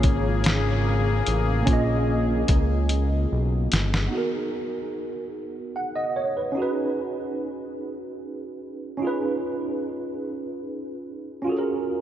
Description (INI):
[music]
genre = slow six-eight R&B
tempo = 49 BPM (dotted quarters)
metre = 6/8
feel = straight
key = unclear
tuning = A4 = 440 Hz
[part]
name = tine electric piano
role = accompaniment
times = 0.0-12.0 s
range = Bb3 to Gb5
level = -27 LUFS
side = right 2 dB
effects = ensemble chorus
[part]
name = warm analog pad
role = sustained chords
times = 0.0-4.1 s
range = Db3 to Ab4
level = -29 LUFS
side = left 3 dB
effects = chorus
[part]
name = fat analog bass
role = bass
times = 0.0-4.1 s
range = G1 to Db2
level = -23 LUFS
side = equal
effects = none
[part]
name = dusty soul sampler-style drum kit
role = drums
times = 0.0-4.1 s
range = hi-hat, kick drum, snare drum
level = -24 LUFS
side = equal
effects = vintage 12-bit sampler grit
[sound]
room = moderate huge ambient reverb, RT60 4.1 s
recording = dreamy mix soaked in reverb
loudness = -23 LUFS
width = side -11 dB against mid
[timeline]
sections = 0.0-4.1 A section; 4.1-12.0 B section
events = drum fill 2.9-4.1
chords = 0.0 Bbm7; 4.1 Abm9; 6.6 Db7sus4; 9.0 Db7; 11.5 Gbmaj9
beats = 0.45 | 1.67 2.89 | 4.12 5.34 | 6.57 7.79 | 9.02 10.24 | 11.46